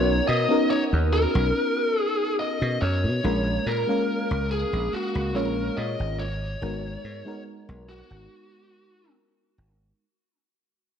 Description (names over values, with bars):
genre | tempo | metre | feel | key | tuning
vaporwave | 71 BPM | 4/4 | straight | unclear | A4 = 440 Hz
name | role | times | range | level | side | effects
biting lead guitar | melody | 0.0-9.1 s | F#4 to D#5 | -27 LUFS | left 1 dB | overdrive, vintage 12-bit sampler grit, tape echo
mellow FM electric piano | accompaniment | 0.0-10.0 s | G#3 to E#5 | -27 LUFS | equal | wide subtle chorus, vintage 12-bit sampler grit
dry thumbed slap bass | bass | 0.0-9.9 s | G#1 to B2 | -26 LUFS | equal | none
room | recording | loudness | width
moderate lush hall reverb, RT60 1.6 s | none | -22 LUFS | side -8 dB against mid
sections
0.0-10.0 A section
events
fade-out 1.0-10.0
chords
0.0 Bmaj9; 3.2 A#m7; 6.2 G#m7